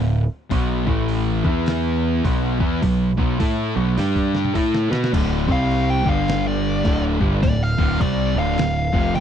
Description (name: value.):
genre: stoner and doom metal.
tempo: 104 BPM.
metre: 4/4.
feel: swing 62% on 8ths.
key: unclear.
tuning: A4 = 439 Hz.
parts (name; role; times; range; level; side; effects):
distorted electric guitar; riff; 0.0-9.2 s; D2 to B4; -26 LUFS; left 2 dB; distortion.
thick fuzz guitar; riff; 0.0-9.2 s; D2 to B4; -26 LUFS; left 9 dB; distortion.
thick fuzz guitar; riff; 0.0-9.2 s; D2 to B4; -24 LUFS; right 10 dB; distortion.
growling picked electric bass; bass; 0.0-9.2 s; D1 to B2; -23 LUFS; equal; overdrive.
lo-fi sampler-style drum kit; drums; 0.5-9.2 s; crash cymbal, hi-hat, kick drum, snare drum, toms; -23 LUFS; equal; none.
fuzz lead guitar; melody; 5.5-9.2 s; D5 to G5; -25 LUFS; left 1 dB; distortion, tape echo.
room: digital ambience.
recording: dry, close 1970s-style studio recording.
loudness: -18 LUFS.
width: side -9 dB against mid.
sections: 0.0-5.1 A section; 5.1-9.2 B section.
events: drum fill 4.0-5.1; lead electric guitar solo 5.1-9.2.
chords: 0.0 D5; 0.5 B5; 0.8 A5; 1.4 E5; 2.2 B5; 4.0 G5; 4.5 B5; 5.1 D5; 5.4 C5; 6.0 G5; 6.9 Dm.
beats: | 0.52 1.09 1.67 2.24 | 2.82 3.40 3.97 4.55 | 5.12 5.70 6.28 6.85 | 7.43 8.01 8.58 9.16.